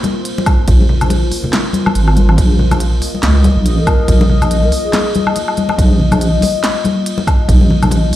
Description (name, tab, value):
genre	deep dubstep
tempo	141 BPM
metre	4/4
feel	swing 58% on 16ths, half-time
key	unclear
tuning	A4 = 440 Hz
part	deep dark ambient pad	sustained chords	0.0-8.2 s	Bb3 to Eb5	-21 LUFS	left 4 dB	chorus, built-in reverb
part	deep house drum kit	drums	0.0-8.2 s	crash cymbal, handclaps, hi-hat, snare drum, woodblock	-20 LUFS	equal	none
part	congas	percussion	0.0-8.0 s	none	-18 LUFS	left 3 dB	dub echo
part	electronic kick drum	drums	0.5-7.6 s	none	-12 LUFS	equal	none
part	deep soft wobble bass	bass	0.7-8.1 s	Ab1 to Db2	-12 LUFS	equal	chorus
part	breathy mellow low ney	melody	3.8-5.3 s	Ab4 to Bb4	-23 LUFS	equal	dub echo
room	light reverb, digital ambience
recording	played on a big sound system in a bare room, large studio reverb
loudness	-10 LUFS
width	side -14 dB against mid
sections	0.0-8.2 A section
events	none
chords	0.0 Bbsus2